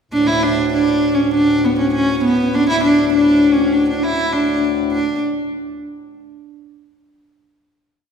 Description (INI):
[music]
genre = medieval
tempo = 100 BPM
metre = 2/4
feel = straight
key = unclear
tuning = A4 = 439 Hz
[part]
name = rich viola da gamba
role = melody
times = 0.1-5.2 s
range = B3 to E4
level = -15 LUFS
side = equal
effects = none
[part]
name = hand-pumped harmonium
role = drone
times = 0.1-5.0 s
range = D2 to A2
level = -25 LUFS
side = equal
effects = none
[sound]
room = wet concert hall reverb, RT60 2.1 s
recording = heard from further back in the room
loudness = -14 LUFS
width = side -7 dB against mid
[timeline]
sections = 0.1-4.9 A section; 4.9-6.1 final note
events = none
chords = none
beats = | 0.12 0.72 | 1.33 1.93 | 2.54 3.14 | 3.74 4.34 | 4.93